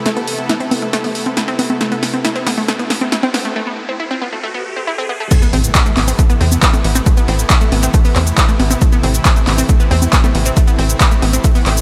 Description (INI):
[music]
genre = uplifting trance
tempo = 137 BPM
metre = 4/4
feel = straight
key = A minor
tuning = A4 = 437 Hz
[part]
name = supersaw pad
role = sustained chords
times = 0.0-11.8 s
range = C3 to A4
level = -26 LUFS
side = equal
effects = sidechain pumping
[part]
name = riser, swell and impact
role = sound effects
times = 1.1-7.1 s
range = none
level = -30 LUFS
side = equal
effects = none
[part]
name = unison pluck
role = arpeggios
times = 0.1-11.7 s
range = A3 to E4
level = -23 LUFS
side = equal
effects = sidechain pumping, digital delay
[part]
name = punchy analog drum machine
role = drums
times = 0.1-11.8 s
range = congas, crash cymbal, handclaps, hi-hat, shaker, snare drum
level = -20 LUFS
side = equal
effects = sidechain pumping on hats, sidechain pumping on perc, sidechain pumping on cymbals
[part]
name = electronic kick drum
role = drums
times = 5.3-11.5 s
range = none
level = -15 LUFS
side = equal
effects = none
[part]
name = tight sequencer bass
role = bass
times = 5.5-11.8 s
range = A1 to E2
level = -17 LUFS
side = equal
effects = sidechain pumping
[sound]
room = light reverb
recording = high-pass filter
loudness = -14 LUFS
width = mono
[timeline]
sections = 0.0-5.3 A section; 5.3-11.8 B section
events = build-up 0.0-5.3; drum fill 0.0-3.6; filter sweep on synth arpeggio sound 0.0-5.3; break 3.6-5.3; swell 4.4-5.3; drop 5.3-11.8; impact 5.3-7.1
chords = 0.0 Amadd9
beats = | 0.06 0.49 0.93 1.37 | 1.81 2.25 2.68 3.12 | 3.56 4.00 4.44 4.87 | 5.31 5.75 6.19 6.63 | 7.06 7.50 7.94 8.38 | 8.82 9.25 9.69 10.13 | 10.57 11.01 11.44